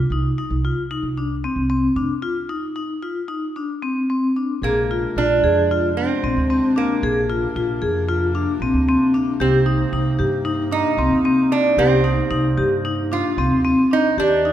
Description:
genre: contemporary instrumental, chamber music in an uneven meter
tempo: 226 BPM (eighths)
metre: 9/8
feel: straight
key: C minor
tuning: A4 = 441 Hz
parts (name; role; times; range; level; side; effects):
- upright bass; bass; 0.0-14.5 s; F1 to G2; -23 LUFS; right 1 dB; none
- vibraphone with medium hard mallets; arpeggios; 0.1-14.5 s; C4 to Ab4; -20 LUFS; left 2 dB; none
- lap resonator guitar; second line; 4.6-14.5 s; Bb3 to F4; -22 LUFS; right 4 dB; none
- mellow woodwind section; sustained chords; 4.6-14.5 s; C3 to G4; -29 LUFS; left 1 dB; none
room: wet concert hall reverb, RT60 1.8 s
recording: none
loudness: -17 LUFS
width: side -11 dB against mid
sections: 0.0-4.6 A section; 4.6-14.5 B section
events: break 2.2-4.6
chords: 0.0 Cm; 4.6 Bb9; 9.4 Cm7

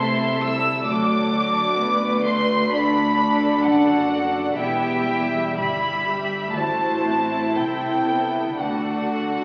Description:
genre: classical, slow romantic movement for string orchestra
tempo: 56-67 BPM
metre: 4/4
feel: rubato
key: unclear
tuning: A4 = 440 Hz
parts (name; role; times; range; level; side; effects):
- rich studio violin section; melody; 0.0-9.4 s; E5 to E6; -26 LUFS; equal; none
- dark studio violin section; second line; 0.0-9.4 s; E4 to G5; -28 LUFS; equal; none
- warm studio viola section; accompaniment; 0.0-9.4 s; F#3 to G4; -27 LUFS; equal; none
- rich studio double bass section; bass; 0.0-9.4 s; E1 to D2; -38 LUFS; equal; none
- warm studio cello section; bass; 0.0-9.4 s; D2 to D3; -30 LUFS; equal; none
room: wet recital hall reverb, RT60 1.4 s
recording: very old 78 rpm record, vinyl crackle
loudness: -21 LUFS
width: mono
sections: 0.0-9.4 A section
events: none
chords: 0.0 Am/C; 0.9 D; 4.6 Em; 6.6 Am; 8.6 D

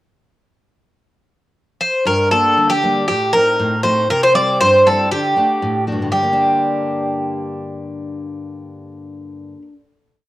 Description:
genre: greek folk, Greek bouzouki band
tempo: 118 BPM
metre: 2/4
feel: straight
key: G harmonic minor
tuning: A4 = 440 Hz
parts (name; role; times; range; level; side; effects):
- Greek bouzouki; melody; 1.8-9.6 s; G4 to D5; -14 LUFS; equal; cassette tape
- picked steel-string acoustic guitar; accompaniment; 2.1-9.7 s; G2 to F#5; -22 LUFS; left 1 dB; none
room: wet spring reverb, RT60 1.2 s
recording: home recording on cassette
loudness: -14 LUFS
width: side -16 dB against mid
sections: 1.0-2.1 pickup bar; 2.1-6.1 A section; 6.1-8.2 final chord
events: none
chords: 1.0 N.C.; 2.1 Gm; 3.1 Adim; 4.1 C; 5.1 D; 6.1 Gm

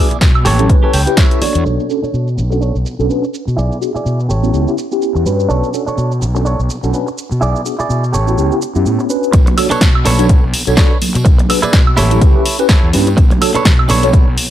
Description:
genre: filtered disco house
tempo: 125 BPM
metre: 4/4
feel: swing 57% on 16ths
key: B minor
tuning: A4 = 440 Hz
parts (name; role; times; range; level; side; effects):
- mellow tine electric piano; accompaniment; 0.0-14.1 s; B3 to D5; -18 LUFS; left 1 dB; medium stereo tremolo, phaser, vintage 12-bit sampler grit, sidechain pumping, low-pass filter
- direct-recorded clean electric guitar; riff; 0.0-14.3 s; D4 to G5; -20 LUFS; right 4 dB; vintage 12-bit sampler grit, sidechain pumping, low-pass filter
- fuzz fingered electric bass; bass; 0.1-14.4 s; A1 to B2; -16 LUFS; equal; overdrive, sidechain pumping, low-pass filter
- punchy analog drum machine; drums; 0.1-14.5 s; hi-hat, shaker, snare drum, woodblock; -18 LUFS; equal; sidechain pumping on hats, low-pass filter on hats, sidechain pumping on perc, low-pass filter on perc, low-pass filter on snare, low-pass filter on room
- tambourine and congas; percussion; 0.1-1.6, 9.3-14.5 s; none; -22 LUFS; right 2 dB; sidechain pumping on perc, low-pass filter on perc
- electronic kick drum; drums; 0.2-1.3, 9.3-14.2 s; none; -10 LUFS; equal; none
room: light reverb, digital ambience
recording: none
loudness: -11 LUFS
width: side -12 dB against mid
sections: 0.0-1.7 A section; 1.7-9.3 B section; 9.3-14.5 C section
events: clean electric guitar fill 0.7-1.7; filter sweep 1.7-9.3; drop 9.3-14.5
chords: 0.5 A7; 1.7 Bm9; 3.6 E7/B; 4.3 A7; 5.5 Bm9; 7.4 E7/B; 8.1 A7; 9.3 Bm9; 11.3 E7/B; 12.0 A7; 13.2 Bm9

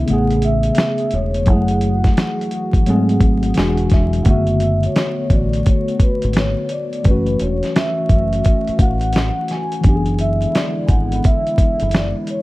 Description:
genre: lo-fi hip hop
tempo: 86 BPM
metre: 4/4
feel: swing 65% on 16ths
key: unclear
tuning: A4 = 440 Hz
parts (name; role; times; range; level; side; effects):
- tine electric piano; accompaniment; 0.0-12.4 s; C#3 to G#5; -21 LUFS; left 1 dB; medium stereo tremolo, cassette tape
- dark analog pad; sustained chords; 0.0-12.4 s; C#3 to G#4; -27 LUFS; equal; chorus
- deep dub fingered electric bass; bass; 0.0-12.1 s; E1 to G#2; -20 LUFS; equal; none
- vibraphone with soft mallets; melody; 0.1-12.4 s; B4 to G#5; -23 LUFS; equal; tape echo
- dusty soul sampler-style drum kit; drums; 0.1-12.4 s; hi-hat, kick drum, snare drum; -16 LUFS; equal; none
room: light reverb, digital ambience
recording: dark, warm production, vinyl crackle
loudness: -14 LUFS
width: side -19 dB against mid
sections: 0.0-4.3 A section; 4.3-12.4 B section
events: tine electric piano fill 3.2-4.3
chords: 0.1 Amaj9; 1.5 F#m9; 2.9 G#7b9; 3.6 E9; 4.3 Bm7/F#; 7.1 F#m7; 9.8 E7/F#

